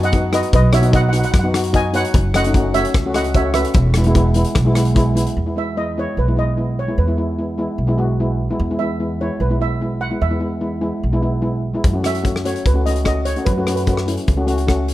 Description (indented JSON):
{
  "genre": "calypso",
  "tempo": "148 BPM",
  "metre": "4/4",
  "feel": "straight",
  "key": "E major",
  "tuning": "A4 = 440 Hz",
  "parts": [
    { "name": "steel pan", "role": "melody", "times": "0.0-14.0 s", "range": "B4 to G#5", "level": "-23 LUFS", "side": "right 3 dB", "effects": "none" },
    { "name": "steel pan", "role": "accompaniment", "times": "0.0-14.9 s", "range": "G#3 to F#4", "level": "-21 LUFS", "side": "left 2 dB", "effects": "none" },
    { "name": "upright bass", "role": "bass", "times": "0.0-14.9 s", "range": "E1 to F#2", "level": "-19 LUFS", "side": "right 1 dB", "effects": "none" },
    { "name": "loose indie drum kit", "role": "drums", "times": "0.0-5.4, 11.8-14.9 s", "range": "hi-hat, kick drum, rim click", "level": "-19 LUFS", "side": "left 1 dB", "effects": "none" }
  ],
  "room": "light reverb",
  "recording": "close, detailed microphones",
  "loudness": "-15 LUFS",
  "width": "side -15 dB against mid",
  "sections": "0.0-5.4 A section; 5.4-14.9 B section",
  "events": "none",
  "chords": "0.0 B; 2.1 F#m7; 3.8 E; 11.8 F#m",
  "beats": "0.13 | 0.53 0.93 1.34 1.74 | 2.14 2.54 2.94 3.35 | 3.75 4.15 4.56 4.96 | 5.36 5.77 6.17 6.58 | 6.98 7.38 7.79 8.19 | 8.60 9.00 9.41 9.81 | 10.22 10.62 11.03 11.43 | 11.84 12.24 12.65 13.06 | 13.46 13.87 14.27 14.68"
}